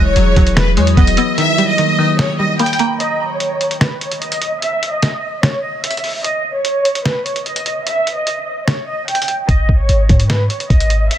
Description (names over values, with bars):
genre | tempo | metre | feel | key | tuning
hip hop, trap | 148 BPM | 4/4 | half-time | G# minor | A4 = 440 Hz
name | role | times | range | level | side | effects
warm studio violin section | melody | 0.0-11.2 s | B4 to G5 | -18 LUFS | equal | low-pass filter
dark detuned synth bell | second line | 0.0-3.0 s | A#5 to F#6 | -25 LUFS | right 4 dB | chorus, phaser, digital delay
string-like resonator pluck | accompaniment | 0.0-3.0 s | D#3 to B3 | -19 LUFS | left 1 dB | chorus, low-pass filter
deep dark ambient pad | sustained chords | 0.0-3.0 s | D#3 to B4 | -21 LUFS | right 1 dB | chorus, built-in reverb
clean 808-style bass | bass | 0.0-1.2, 9.5-11.1 s | E1 to G#2 | -14 LUFS | equal | none
lo-fi sampler-style drum kit | drums | 0.2-11.2 s | finger snaps, hi-hat, kick drum, snare drum | -16 LUFS | equal | vintage 12-bit sampler grit
room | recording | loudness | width
little or no reverb | dense, heavily limited modern master | -13 LUFS | side -11 dB against mid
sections
0.0-3.0 A section; 3.0-11.2 B section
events
break 1.4-3.0, 3.0-9.5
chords
0.0 Eadd9; 1.4 D#; 3.0 N.C.; 9.5 G#5